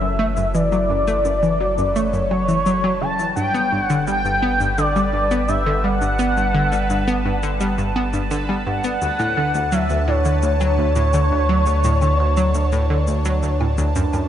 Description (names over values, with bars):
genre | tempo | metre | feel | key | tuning
ambient, sequencer-driven space music | 85 BPM | 4/4 | straight | unclear | A4 = 441 Hz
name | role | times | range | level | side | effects
expressive synth lead | melody | 0.0-14.0 s | C#5 to A5 | -21 LUFS | left 1 dB | analog chorus, tape echo
phased analog pad | sustained chords | 0.0-14.3 s | D3 to A5 | -28 LUFS | right 1 dB | phaser, chorus
analog pluck | riff | 0.0-14.3 s | D2 to B3 | -22 LUFS | equal | chorus, tape echo
warm sub bass | bass | 0.0-14.3 s | F#1 to D2 | -22 LUFS | equal | none
bubbling stepped-filter texture | texture | 0.0-14.3 s | B4 | -39 LUFS | right 2 dB | none
cabasa and woodblock | percussion | 0.4-14.3 s | none | -38 LUFS | left 4 dB | overdrive, tape echo
room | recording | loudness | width
moderate lush hall reverb, RT60 2.8 s | nothing above 10.8 kHz | -17 LUFS | side -10 dB against mid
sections
0.0-14.3 A section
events
fade-in on analog synth pad 0.0-14.3; fade-in on drum 0.0-14.3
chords
0.0 F#m7; 3.4 Gmaj7; 9.0 Dmaj7